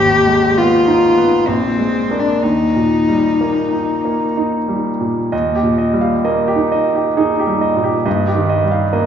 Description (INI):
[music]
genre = classical, romantic duo for cello and grand piano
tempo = 61-69 BPM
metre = 3/4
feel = rubato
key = Eb major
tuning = A4 = 440 Hz
[part]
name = warm cello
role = melody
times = 0.0-4.4 s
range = C4 to G4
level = -14 LUFS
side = left 3 dB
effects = none
[part]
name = bright grand piano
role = accompaniment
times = 0.0-9.1 s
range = Ab1 to F5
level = -15 LUFS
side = right 1 dB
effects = none
[sound]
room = wet recital hall reverb, RT60 1.7 s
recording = recorded in a church or concert hall, nothing above 7.5 kHz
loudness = -13 LUFS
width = side -8 dB against mid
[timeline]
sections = 0.0-5.3 A section; 5.3-9.1 A section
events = none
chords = 0.0 Fm7b5/Ab; 1.5 Bb7; 2.4 Eb; 8.1 Eb/G